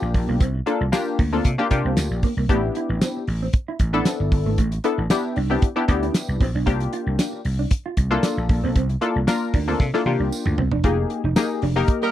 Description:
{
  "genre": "early-eighties boogie funk",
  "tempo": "115 BPM",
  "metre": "4/4",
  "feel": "straight",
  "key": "unclear",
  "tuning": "A4 = 439 Hz",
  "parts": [
    { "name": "funky polysynth comp", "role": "accompaniment", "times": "0.0-12.1 s", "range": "Bb3 to Bb4", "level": "-23 LUFS", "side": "left 4 dB", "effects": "chorus" },
    { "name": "vintage slap bass", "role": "bass", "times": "0.0-11.8 s", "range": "E1 to C3", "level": "-23 LUFS", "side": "equal", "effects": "none" },
    { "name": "damped 70s drum kit", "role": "drums", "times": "0.1-12.0 s", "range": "hi-hat, kick drum, snare drum, toms", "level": "-20 LUFS", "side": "equal", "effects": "none" },
    { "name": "mellow electric guitar", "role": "riff", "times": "0.2-11.7 s", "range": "A3 to F4", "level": "-29 LUFS", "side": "right 6 dB", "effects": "lush chorus" },
    { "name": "tambourine", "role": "percussion", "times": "0.9-11.5 s", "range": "none", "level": "-38 LUFS", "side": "right 7 dB", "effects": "none" },
    { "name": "clear horn section", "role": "second line", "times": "12.0-12.1 s", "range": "G3 to Bb4", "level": "-20 LUFS", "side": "right 5 dB", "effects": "none" }
  ],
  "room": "little or no reverb",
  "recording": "dry, close 1970s-style studio recording",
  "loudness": "-19 LUFS",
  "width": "side -12 dB against mid",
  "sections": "0.0-10.8 A section; 10.8-12.1 B section",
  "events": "drum fill 9.8-10.8",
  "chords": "0.0 C9sus4; 2.5 A9sus4; 6.7 C9sus4; 10.8 Fm11"
}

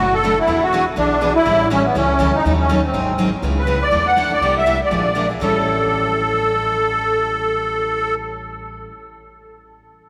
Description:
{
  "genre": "acoustic string swing (jazz manouche)",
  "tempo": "244 BPM",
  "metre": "4/4",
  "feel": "swing 56% on 8ths",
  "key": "A mixolydian",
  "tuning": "A4 = 440 Hz",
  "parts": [
    { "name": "musette accordion", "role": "melody", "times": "0.0-8.1 s", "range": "B3 to F#5", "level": "-19 LUFS", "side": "equal", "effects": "none" },
    { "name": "picked steel-string acoustic guitar", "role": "accompaniment", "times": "0.0-8.9 s", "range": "A2 to A4", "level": "-28 LUFS", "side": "equal", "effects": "none" },
    { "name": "picked steel-string acoustic guitar", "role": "accompaniment", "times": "0.0-8.9 s", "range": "A2 to B4", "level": "-29 LUFS", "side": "equal", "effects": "none" },
    { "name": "upright bass", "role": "bass", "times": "0.0-8.8 s", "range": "F#1 to E2", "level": "-27 LUFS", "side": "equal", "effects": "none" }
  ],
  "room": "wet cathedral reverb, RT60 5.3 s",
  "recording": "recorded in a church or concert hall",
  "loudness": "-17 LUFS",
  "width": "mono",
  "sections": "0.0-3.4 A section; 3.4-5.4 B section; 5.4-7.4 C section",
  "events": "none",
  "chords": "0.5 E7; 1.5 A7; 2.4 D#m7b5; 2.9 G#7; 3.4 C#m7; 3.9 E9sus4; 4.4 C7; 4.9 Bb7; 5.4 A7"
}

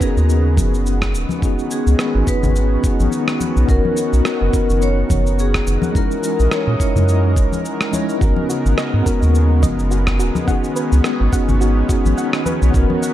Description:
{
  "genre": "sunset chillout",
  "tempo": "106 BPM",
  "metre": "4/4",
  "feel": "swing 56% on 16ths",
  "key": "unclear",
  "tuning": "A4 = 440 Hz",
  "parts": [
    { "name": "vibraphone with medium hard mallets", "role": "melody", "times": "0.0-7.6 s", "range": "G#4 to C#5", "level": "-26 LUFS", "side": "left 2 dB", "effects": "tape echo" },
    { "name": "tine electric piano", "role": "accompaniment", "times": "0.0-13.1 s", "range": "G#3 to C#5", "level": "-21 LUFS", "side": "left 2 dB", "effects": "fast stereo tremolo, auto-pan, ping-pong delay" },
    { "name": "lush unison pad", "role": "sustained chords", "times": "0.0-13.1 s", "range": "C#3 to A#5", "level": "-25 LUFS", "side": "equal", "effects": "chorus, vintage 12-bit sampler grit" },
    { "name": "electronic cabasa and rim click", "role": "drums", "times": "0.0-13.1 s", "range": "none", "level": "-26 LUFS", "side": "equal", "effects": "none" },
    { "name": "electronic kick drum", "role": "drums", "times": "0.0-12.9 s", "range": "none", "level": "-19 LUFS", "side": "equal", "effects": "none" },
    { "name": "round analog bass", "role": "bass", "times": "0.2-12.9 s", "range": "D#1 to A#2", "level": "-15 LUFS", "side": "equal", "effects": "tube saturation" },
    { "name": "congas", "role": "percussion", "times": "0.6-13.0 s", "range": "none", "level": "-25 LUFS", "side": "left 4 dB", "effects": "none" },
    { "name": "soft round pluck", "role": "arpeggios", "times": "8.2-13.1 s", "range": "F#4 to F#5", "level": "-29 LUFS", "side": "right 3 dB", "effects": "chorus, ping-pong delay" }
  ],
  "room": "light reverb",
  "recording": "dark, warm production",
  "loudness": "-14 LUFS",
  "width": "side -13 dB against mid",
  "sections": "0.0-13.1 A section",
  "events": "none",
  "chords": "0.0 G#m11; 1.4 C#9sus4; 3.7 Bmaj9; 6.0 F#13/A#; 8.2 G#m11; 10.5 C#9sus4"
}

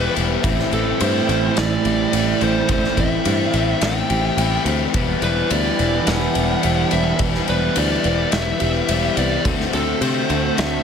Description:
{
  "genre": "rock, shoegaze and dream pop",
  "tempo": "106 BPM",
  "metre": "4/4",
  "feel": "straight",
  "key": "E minor",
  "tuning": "A4 = 441 Hz",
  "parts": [
    { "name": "fuzz lead guitar", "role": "melody", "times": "0.0-10.8 s", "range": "A4 to G5", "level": "-24 LUFS", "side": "right 2 dB", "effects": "distortion, analog delay" },
    { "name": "picked twelve-string acoustic guitar", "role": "arpeggios", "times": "0.0-10.8 s", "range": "E3 to G4", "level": "-30 LUFS", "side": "right 10 dB", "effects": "lush chorus, analog delay" },
    { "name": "overdriven electric guitar", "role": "riff", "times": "0.0-10.8 s", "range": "A2 to F#4", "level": "-23 LUFS", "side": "left 10 dB", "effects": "lush chorus" },
    { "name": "twangy electric guitar", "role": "riff", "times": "0.0-10.8 s", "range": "A2 to C5", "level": "-25 LUFS", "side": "right 10 dB", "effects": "reverse reverb" },
    { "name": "picked electric bass", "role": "bass", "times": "0.0-10.8 s", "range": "E1 to C3", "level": "-23 LUFS", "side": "equal", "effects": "none" },
    { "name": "loose indie drum kit", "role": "drums", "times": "0.2-10.7 s", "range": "kick drum, ride cymbal, snare drum", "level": "-23 LUFS", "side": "left 1 dB", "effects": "none" }
  ],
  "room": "light reverb",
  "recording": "none",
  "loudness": "-16 LUFS",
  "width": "side -7 dB against mid",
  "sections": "0.0-10.8 A section",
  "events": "none",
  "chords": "0.4 Am7; 4.9 Em7; 9.4 D7"
}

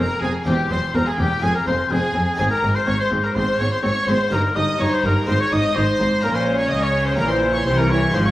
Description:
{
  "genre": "classical, baroque-style concerto movement with solo episodes",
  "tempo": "125 BPM",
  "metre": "4/4",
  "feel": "straight",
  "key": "unclear",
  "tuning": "A4 = 438 Hz",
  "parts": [
    { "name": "rich chamber violin section", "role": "melody", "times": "0.0-8.3 s", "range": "G5 to Eb6", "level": "-28 LUFS", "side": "equal", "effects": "none" },
    { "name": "warm oboe", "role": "melody", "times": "0.0-8.3 s", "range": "G4 to Eb5", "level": "-23 LUFS", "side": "left 2 dB", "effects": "none" },
    { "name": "rich chamber violin section", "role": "second line", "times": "0.0-8.3 s", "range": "G4 to Eb5", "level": "-25 LUFS", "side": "equal", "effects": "none" },
    { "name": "harpsichord", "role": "accompaniment", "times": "0.0-8.3 s", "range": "E2 to F4", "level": "-29 LUFS", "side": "equal", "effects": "none" },
    { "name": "rich chamber viola section", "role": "accompaniment", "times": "0.0-8.3 s", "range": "E3 to Eb4", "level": "-25 LUFS", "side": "equal", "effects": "none" },
    { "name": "rich chamber cello section", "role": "bass", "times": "0.0-8.3 s", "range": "E2 to Db3", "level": "-25 LUFS", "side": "equal", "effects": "none" },
    { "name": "rich chamber double bass section", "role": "bass", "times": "0.0-8.3 s", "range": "E1 to Db2", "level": "-24 LUFS", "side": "equal", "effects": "none" }
  ],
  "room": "wet recital hall reverb, RT60 1.7 s",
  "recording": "vinyl crackle, small room ambience",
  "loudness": "-17 LUFS",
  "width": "side -15 dB against mid",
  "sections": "0.0-8.3 A section",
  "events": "none",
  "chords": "0.5 C/E; 1.4 Fm; 2.4 Ab; 4.3 Eb/G; 5.3 Ab; 6.2 Bbm; 7.2 C7/Bb"
}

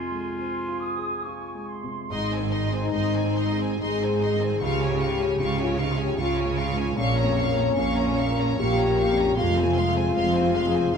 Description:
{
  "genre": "cinematic, emotional film score for orchestra",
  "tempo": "67-78 BPM",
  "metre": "3/4",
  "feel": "rubato",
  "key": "Ab major",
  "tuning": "A4 = 440 Hz",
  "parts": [
    { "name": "bright clarinet", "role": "second line", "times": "0.0-1.7 s", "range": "F4", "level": "-33 LUFS", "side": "right 1 dB", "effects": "none" },
    { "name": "mellow small flute group", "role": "second line", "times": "0.0-2.1 s", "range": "C6 to Eb6", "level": "-33 LUFS", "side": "right 3 dB", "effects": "none" },
    { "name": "warm cor anglais", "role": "second line", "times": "0.0-1.7 s", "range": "Ab5", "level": "-42 LUFS", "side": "right 1 dB", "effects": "none" },
    { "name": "warm concert grand piano", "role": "accompaniment", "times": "0.0-11.0 s", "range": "Bb1 to Bb4", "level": "-30 LUFS", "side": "left 2 dB", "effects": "none" },
    { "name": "rich studio violin section", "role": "melody", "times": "2.1-11.0 s", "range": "Ab5 to Db6", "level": "-33 LUFS", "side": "left 3 dB", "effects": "none" },
    { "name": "rich studio violin section", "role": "second line", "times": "2.1-11.0 s", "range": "C5 to F5", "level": "-33 LUFS", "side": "right 1 dB", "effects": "none" },
    { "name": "rich studio viola section", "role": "accompaniment", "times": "2.1-11.0 s", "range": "Ab3 to F4", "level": "-35 LUFS", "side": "right 2 dB", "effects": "none" },
    { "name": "mellow French horn section", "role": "sustained chords", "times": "2.1-11.0 s", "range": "Db4 to Ab4", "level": "-25 LUFS", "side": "left 4 dB", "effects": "none" },
    { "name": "rich studio double bass section", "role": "bass", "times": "2.1-11.0 s", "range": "F1 to Db2", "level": "-29 LUFS", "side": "right 5 dB", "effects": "none" },
    { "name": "warm studio cello section", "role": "bass", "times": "2.1-11.0 s", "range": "F2 to Db3", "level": "-29 LUFS", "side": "right 5 dB", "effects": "none" }
  ],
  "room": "moderate scoring stage reverb, RT60 1.8 s",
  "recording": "none",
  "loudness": "-22 LUFS",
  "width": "side -6 dB against mid",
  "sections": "0.0-2.1 A section; 2.1-11.0 A section",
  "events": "none",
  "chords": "0.0 Fm; 2.1 Ab; 4.6 Db; 7.0 Bbm; 9.4 Fm"
}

